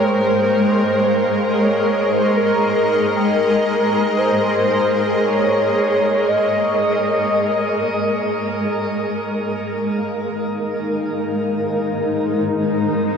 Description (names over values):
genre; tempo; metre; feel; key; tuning
ambient; free time; none; none; Ab major; A4 = 440 Hz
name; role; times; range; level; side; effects
warm velvety synth lead; melody; 0.0-8.4 s; Bb4 to Eb5; -20 LUFS; equal; chorus, ping-pong delay
granular cloud pad; sustained chords; 0.0-13.2 s; Ab3 to F5; -18 LUFS; equal; built-in reverb
vibraphone with medium mallets; arpeggios; 0.0-13.2 s; Bb4 to G5; -31 LUFS; left 2 dB; ping-pong delay
room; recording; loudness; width
wet shimmer reverb, RT60 7.5 s; worn, warbling old tape, cassette tape, warbly pitch drift; -16 LUFS; side -6 dB against mid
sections
0.0-9.4 A section; 9.4-13.2 B section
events
none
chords
0.0 Ab69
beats
free time